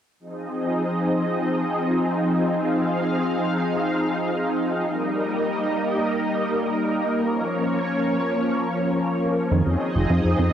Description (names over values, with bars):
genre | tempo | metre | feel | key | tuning
synthwave | free time | none | none | F minor | A4 = 440 Hz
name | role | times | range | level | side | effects
analog string pad | sustained chords | 0.2-10.5 s | F3 to F5 | -21 LUFS | equal | ensemble chorus, cassette tape, plate reverb
analog pluck | arpeggios | 9.5-10.5 s | Eb3 to Eb4 | -28 LUFS | right 7 dB | chorus, cassette tape, tape echo, plate reverb
fat analog bass | bass | 9.5-10.5 s | F1 to F2 | -20 LUFS | equal | none
room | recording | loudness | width
wet studio reverb, RT60 0.7 s | home recording on cassette | -21 LUFS | side -9 dB against mid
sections
0.2-10.5 A section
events
none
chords
0.2 Fm7; 4.9 Eb; 7.2 Bbm; 9.5 Fm7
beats
free time